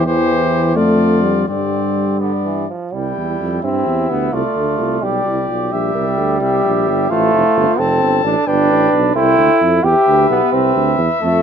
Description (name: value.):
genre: classical, brass quintet.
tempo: 86 BPM (dotted quarters).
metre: 6/8.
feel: rubato.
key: C major.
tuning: A4 = 441 Hz.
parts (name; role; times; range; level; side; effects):
clear cornet; melody; 0.0-11.4 s; C5 to A5; -22 LUFS; left 7 dB; none.
mellow trumpet; second line; 0.0-11.4 s; B3 to C5; -23 LUFS; right 7 dB; none.
bright trombone; accompaniment; 0.0-11.4 s; D3 to G4; -17 LUFS; right 2 dB; none.
mellow French horn; accompaniment; 0.0-11.4 s; E3 to B4; -20 LUFS; left 4 dB; none.
warm tuba; bass; 0.0-11.4 s; F1 to G2; -20 LUFS; right 4 dB; none.
room: light reverb.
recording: none.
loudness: -13 LUFS.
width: side -7 dB against mid.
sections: 0.0-2.9 A section; 2.9-11.4 B section.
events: none.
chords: 0.0 C/E; 0.8 Dm/F; 1.5 Gsus4; 2.2 G; 2.9 C; 4.3 Dm7/C; 5.0 G/B; 5.7 C7/Bb; 7.1 F; 8.5 G; 9.2 C.